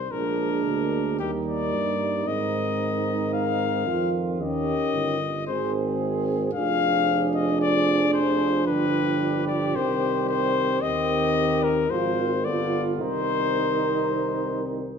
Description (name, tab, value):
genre	classical, brass quintet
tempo	112 BPM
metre	4/4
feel	straight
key	C minor from 6.5 s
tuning	A4 = 440 Hz
part	clear cornet	melody	0.0-14.6 s	G4 to F5	-26 LUFS	left 8 dB	none
part	warm tuba	bass	0.0-14.9 s	F1 to Ab2	-29 LUFS	right 4 dB	none
part	mellow flugelhorn	second line	0.1-14.9 s	D4 to Ab4	-30 LUFS	right 9 dB	none
part	mellow French horn	accompaniment	0.1-14.9 s	Bb3 to D4	-29 LUFS	equal	none
part	warm euphonium	accompaniment	0.1-14.9 s	D3 to Ab3	-30 LUFS	equal	none
room	wet recital hall reverb, RT60 1.6 s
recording	minimal, uncompressed stereo recording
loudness	-22 LUFS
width	side -6 dB against mid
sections	0.0-15.0 A section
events	none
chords	0.1 Bb7; 1.2 Eb; 2.3 Ab; 4.4 Eb7; 5.5 Ab; 6.5 Dm7b5/F; 8.7 G7; 9.7 Cm; 10.8 Cm/Eb; 11.9 Fm/Ab; 12.4 G7; 13.0 Cm